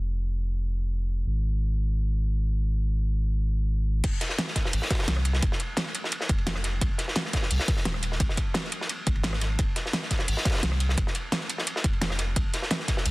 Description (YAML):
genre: liquid drum and bass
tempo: 173 BPM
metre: 4/4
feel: straight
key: F minor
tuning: A4 = 440 Hz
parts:
  - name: saturated sub bass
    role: bass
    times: 0.0-13.1 s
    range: Eb1 to C2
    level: -26 LUFS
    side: equal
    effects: none
  - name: crunchy breakbeat drum kit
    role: drums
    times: 4.0-13.1 s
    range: hi-hat, ride cymbal, snare drum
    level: -30 LUFS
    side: equal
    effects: high-pass filter on cymbals, high-pass filter on hats, high-pass filter on snare, high-pass filter on room
  - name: electronic kick drum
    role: drums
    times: 4.0-13.0 s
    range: none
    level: -27 LUFS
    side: equal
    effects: none
  - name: pop drum kit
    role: drums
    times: 4.0-13.1 s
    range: crash cymbal, hi-hat, rim click, snare drum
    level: -31 LUFS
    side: equal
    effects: none
room: small room ambience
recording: dense, heavily limited modern master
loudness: -24 LUFS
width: side -22 dB against mid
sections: 0.0-4.0 A section; 4.0-13.1 B section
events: drop 4.0-13.1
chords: none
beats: 0.22 0.57 0.92 | 1.26 1.61 1.96 2.31 | 2.65 3.00 3.35 3.69 | 4.04 4.39 4.73 5.08 | 5.43 5.77 6.12 6.47 | 6.81 7.16 7.51 7.85 | 8.20 8.55 8.89 9.24 | 9.59 9.94 10.28 10.63 | 10.97 11.32 11.67 12.02 | 12.36 12.71 13.06